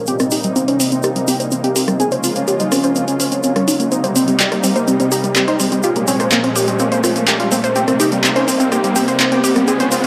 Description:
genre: melodic techno.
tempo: 125 BPM.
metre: 4/4.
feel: straight.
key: C phrygian.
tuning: A4 = 440 Hz.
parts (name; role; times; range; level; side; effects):
unison lead; melody; 0.0-10.1 s; G3 to Ab4; -21 LUFS; equal; analog chorus, tape echo.
lush unison pad; sustained chords; 0.0-10.1 s; Bb2 to F4; -26 LUFS; equal; chorus.
riser and noise sweep; sound effects; 0.6-10.1 s; none; -27 LUFS; equal; none.
unison pluck; arpeggios; 0.1-10.1 s; G3 to C5; -20 LUFS; equal; tape echo.
punchy analog drum machine; drums; 0.1-10.1 s; handclaps, hi-hat, rim click; -22 LUFS; equal; overdrive.
tube shaker; percussion; 0.1-10.1 s; none; -27 LUFS; equal; none.
room: moderate lush hall reverb, RT60 2.1 s.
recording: dry, gritty hardware recording, transformer saturation.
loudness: -16 LUFS.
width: mono.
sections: 0.0-10.1 A section.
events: build-up 0.0-10.1; filter sweep on synth pluck 0.0-10.1; riser 0.6-10.1; noise sweep 9.7-10.1.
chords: 0.1 Cm7; 2.0 Db6; 3.9 Cm7; 5.8 Bbm7; 7.8 Cm7.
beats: | 0.08 0.56 1.04 1.52 | 2.00 2.48 2.96 3.44 | 3.92 4.40 4.88 5.36 | 5.84 6.32 6.80 7.28 | 7.76 8.24 8.72 9.20 | 9.68.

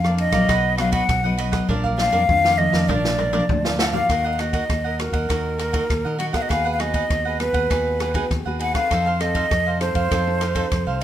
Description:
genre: samba and choro.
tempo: 100 BPM.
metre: 4/4.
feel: straight.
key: Eb minor from 4.1 s.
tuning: A4 = 440 Hz.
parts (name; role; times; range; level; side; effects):
breathy hollow jazz flute; melody; 0.0-11.0 s; Bb4 to Gb5; -22 LUFS; left 1 dB; none.
cavaquinho; accompaniment; 0.0-11.0 s; D4 to F#5; -28 LUFS; right 5 dB; none.
nylon-string guitar; accompaniment; 0.0-11.0 s; F2 to A4; -28 LUFS; left 2 dB; none.
fingered electric bass; bass; 0.0-11.0 s; Bb1 to Eb3; -25 LUFS; equal; none.
open jazz drum kit; drums; 0.0-11.0 s; kick drum, ride cymbal, rim click, snare drum, toms; -25 LUFS; equal; none.
room: moderate studio reverb, RT60 0.8 s.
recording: minimal, uncompressed stereo recording.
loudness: -18 LUFS.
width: side -11 dB against mid.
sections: 0.0-4.1 A section; 4.1-11.0 B section.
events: drum fill 1.7-4.1.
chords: 0.5 B; 1.7 Bb; 4.1 Ebm; 6.5 Abm7/Eb; 8.9 F7.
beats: 0.49 1.09 | 1.69 2.29 2.89 3.49 | 4.09 4.70 5.30 5.90 | 6.50 7.11 7.71 8.31 | 8.91 9.52 10.12 10.72.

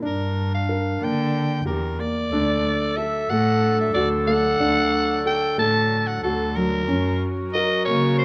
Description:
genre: contemporary instrumental, chamber music in an uneven meter.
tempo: 184 BPM (eighths).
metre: 7/8.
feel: straight.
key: unclear.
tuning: A4 = 439 Hz.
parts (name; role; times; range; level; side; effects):
mellow clarinet; second line; 0.0-8.2 s; D4 to A4; -28 LUFS; equal; none.
felt-muted upright piano; arpeggios; 0.0-8.2 s; F#3 to Bb4; -28 LUFS; equal; none.
warm cello; bass; 0.0-8.2 s; D2 to D3; -28 LUFS; equal; none.
raspy soprano saxophone; melody; 0.1-8.2 s; A4 to A5; -27 LUFS; equal; none.
warm studio string section; sustained chords; 2.3-8.2 s; D3 to A#4; -36 LUFS; equal; none.
room: light reverb.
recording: close, detailed microphones.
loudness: -22 LUFS.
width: mono.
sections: 0.0-2.3 A section; 2.3-8.2 B section.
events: none.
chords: 0.0 Gm; 2.3 D; 6.9 F#.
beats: | 0.03 0.36 0.69 1.01 1.34 1.66 1.99 | 2.32 2.64 2.97 3.30 3.62 3.95 4.28 | 4.60 4.93 5.26 5.58 5.91 6.24 6.57 | 6.89 7.22 7.55 7.87 8.20.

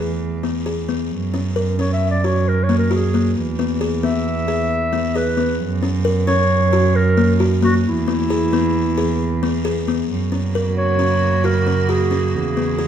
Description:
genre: contemporary instrumental, chamber music in an uneven meter.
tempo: 134 BPM.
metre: 5/4.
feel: straight.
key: unclear.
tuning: A4 = 440 Hz.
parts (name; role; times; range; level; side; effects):
mellow clarinet; melody; 0.0-12.9 s; E4 to E5; -21 LUFS; left 1 dB; none.
buzzing kalimba; arpeggios; 0.0-12.9 s; A#3 to A#4; -21 LUFS; left 5 dB; none.
rich cello; bass; 0.0-12.9 s; E2 to F#2; -20 LUFS; right 4 dB; none.
icy glass pad; sustained chords; 10.5-12.9 s; C#3 to F#4; -24 LUFS; right 6 dB; chorus, built-in reverb.
room: moderate recital hall reverb, RT60 1.4 s.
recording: none.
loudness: -16 LUFS.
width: side -9 dB against mid.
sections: 0.0-10.1 A section; 10.1-12.9 B section.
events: none.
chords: 0.0 E; 1.1 F#; 3.4 E; 5.6 F#; 7.9 E; 10.1 F#; 12.4 E7.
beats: 0.21 0.66 | 1.11 1.56 2.01 2.46 2.91 | 3.36 3.81 4.26 4.71 5.16 | 5.61 6.06 6.51 6.96 7.41 | 7.86 8.31 8.76 9.21 9.65 | 10.10 10.55 11.00 11.45 11.90 | 12.35 12.80.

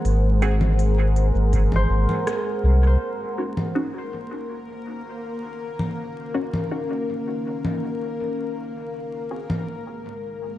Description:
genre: ambient dub.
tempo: 81 BPM.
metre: 4/4.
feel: straight.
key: Eb dorian.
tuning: A4 = 440 Hz.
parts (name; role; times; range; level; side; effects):
deep dark ambient pad; sustained chords; 0.0-10.6 s; Ab3 to Gb5; -29 LUFS; equal; chorus, built-in reverb.
warm sub bass; bass; 0.0-3.0 s; Ab1 to C2; -18 LUFS; equal; none.
organic electronic drum kit; drums; 0.1-9.6 s; congas, hi-hat, rim click; -29 LUFS; equal; dub echo.
filtered dub chord stab; stabs; 0.4-9.5 s; C4 to Ab4; -31 LUFS; equal; phaser, analog chorus, dub echo.
electronic kick drum; drums; 1.5-1.7 s; none; -26 LUFS; equal; none.
concert harp; arpeggios; 1.8-4.9 s; C5; -34 LUFS; left 1 dB; tape echo.
bubbling stepped-filter texture; texture; 3.4-10.6 s; Bb3 to Bb4; -30 LUFS; left 3 dB; chorus, built-in reverb.
room: light reverb, digital ambience.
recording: echo-heavy mix, vinyl crackle, nothing above 11.0 kHz, faint mains hum.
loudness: -21 LUFS.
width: side -14 dB against mid.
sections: 0.0-3.0 A section; 3.0-10.6 B section.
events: filter sweep on ambient pad 3.0-10.6.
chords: 0.0 Ab7; 3.0 Ebm7; 8.9 Ab7.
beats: | 0.05 0.79 1.53 2.27 | 3.01 3.75 4.50 5.24 | 5.98 6.72 7.46 8.20 | 8.94 9.68 10.42.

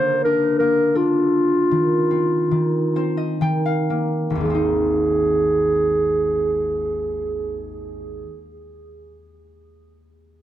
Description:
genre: children's music, lullaby.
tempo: 56-87 BPM.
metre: 3/4.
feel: straight.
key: Ab major pentatonic.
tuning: A4 = 443 Hz.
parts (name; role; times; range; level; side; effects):
dark clarinet; melody; 0.0-7.7 s; F4 to C5; -20 LUFS; right 1 dB; tape echo.
concert harp; accompaniment; 0.0-8.3 s; Ab1 to G5; -22 LUFS; left 1 dB; none.
room: little or no reverb.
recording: dry, close 1970s-style studio recording.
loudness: -17 LUFS.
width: side -12 dB against mid.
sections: 0.0-4.4 A section; 4.4-10.4 B section.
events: slowing down 0.0-4.4; harp fill 2.5-4.4.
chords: 0.0 Bb/D; 1.7 Cmadd11/Eb; 3.4 Eb5; 4.4 Ab.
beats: 0.24 0.96 | 1.71 2.52 3.42 | 4.43 5.50 6.55 | 7.59.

